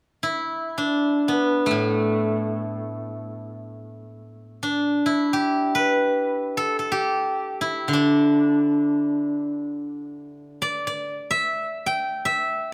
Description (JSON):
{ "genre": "chinese traditional, Chinese solo plucked strings", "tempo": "free time", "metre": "none", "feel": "none", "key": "D zhi mode", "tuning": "A4 = 435 Hz", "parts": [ { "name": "steel-string zither", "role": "solo", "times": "0.2-12.7 s", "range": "A2 to G5", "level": "-24 LUFS", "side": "equal", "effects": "none" } ], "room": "moderate recital hall reverb, RT60 1.3 s", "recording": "none", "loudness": "-23 LUFS", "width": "mono", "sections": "0.0-12.7 A section", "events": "none", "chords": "none", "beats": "free time" }